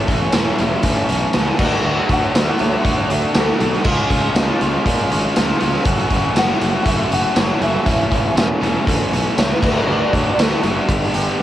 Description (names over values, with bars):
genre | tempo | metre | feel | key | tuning
indie rock | 120 BPM | 4/4 | straight | A major | A4 = 445 Hz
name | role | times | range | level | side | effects
electric guitar at the edge of break-up | melody | 0.0-10.6 s | A4 to F#5 | -24 LUFS | equal | ensemble chorus, analog delay
crunchy overdriven guitar | riff | 0.0-11.4 s | E3 to G4 | -19 LUFS | equal | cassette tape
fuzz fingered electric bass | bass | 0.1-11.4 s | E1 to Bb2 | -23 LUFS | equal | overdrive
raw garage drum kit | drums | 0.1-11.4 s | crash cymbal, hi-hat, kick drum, snare drum, tambourine | -18 LUFS | equal | none
room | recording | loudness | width
light reverb | home recording on cassette | -15 LUFS | side -12 dB against mid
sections
0.0-11.4 A section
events
none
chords
0.0 A/E; 1.6 D; 3.8 C#; 5.9 F#m; 7.9 A/E; 9.6 D; 10.9 G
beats
0.34 0.84 1.34 | 1.84 2.34 2.85 3.35 | 3.85 4.35 4.85 5.35 | 5.86 6.36 6.86 7.36 | 7.87 8.37 8.87 9.38 | 9.88 10.38 10.89 11.39